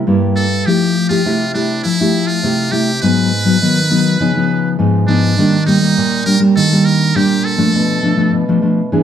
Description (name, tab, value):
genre	samba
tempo	102 BPM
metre	4/4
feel	straight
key	unclear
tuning	A4 = 440 Hz
part	nylon-string guitar	accompaniment	0.0-9.0 s	G2 to G#4	-12 LUFS	equal	none
part	trumpet with metal mute	melody	0.4-8.3 s	D4 to Cb5	-18 LUFS	right 2 dB	none
room	moderate large studio reverb, RT60 1.1 s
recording	band playing live in one room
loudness	-11 LUFS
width	side -9 dB against mid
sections	0.0-9.0 A section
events	none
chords	0.0 C7 (rootless); 0.7 Fmaj9; 3.0 Abm7; 4.2 Db9; 5.4 Ebmaj7; 7.7 Bm7b5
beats	0.07 | 0.67 1.25 1.84 2.44 | 3.02 3.61 4.20 4.79 | 5.38 5.97 6.56 7.16 | 7.75 8.34 8.93